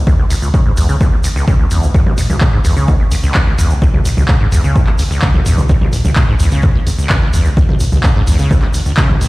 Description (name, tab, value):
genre	acid house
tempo	128 BPM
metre	4/4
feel	straight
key	C# minor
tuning	A4 = 440 Hz
part	warm sub bass	bass	0.0-9.3 s	G#1 to C#2	-16 LUFS	equal	sidechain pumping
part	acid bass, saw	riff	0.1-9.3 s	B1 to C#3	-15 LUFS	equal	overdrive, ensemble chorus, digital delay
part	electronic kick drum	drums	0.1-9.1 s	none	-13 LUFS	equal	none
part	tube shaker	percussion	0.1-9.3 s	none	-30 LUFS	equal	none
part	punchy analog drum machine	drums	0.3-9.3 s	handclaps, hi-hat, toms	-20 LUFS	equal	none
room	light reverb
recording	played on a big sound system in a bare room, stone room reverb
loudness	-10 LUFS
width	side -20 dB against mid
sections	0.0-9.3 A section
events	none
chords	none